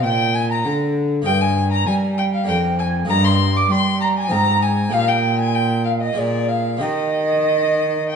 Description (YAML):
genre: classical, baroque-style sonata movement with continuo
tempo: 97 BPM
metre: 3/4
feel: uneven beats, rubato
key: Eb major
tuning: A4 = 437 Hz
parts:
  - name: warm violin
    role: melody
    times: 0.0-8.2 s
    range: D5 to D6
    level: -22 LUFS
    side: left 7 dB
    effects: none
  - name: mellow hollow silver concert flute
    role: second line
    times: 0.0-8.2 s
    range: D5 to D6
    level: -22 LUFS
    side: right 4 dB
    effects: none
  - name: harpsichord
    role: accompaniment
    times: 0.0-8.2 s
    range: F2 to C5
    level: -25 LUFS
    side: equal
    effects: none
  - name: rich cello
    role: bass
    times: 0.0-8.2 s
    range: F2 to G3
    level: -20 LUFS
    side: right 1 dB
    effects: none
room: wet recital hall reverb, RT60 1.4 s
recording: nothing above 10.4 kHz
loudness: -16 LUFS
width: side -6 dB against mid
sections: 0.0-8.2 A section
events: none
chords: 0.0 Cm; 1.3 Eb/G; 2.5 Bb7/F; 3.1 Eb/G; 4.3 Fm7/Ab; 4.9 Eb/Bb; 6.2 Bb7; 6.8 Eb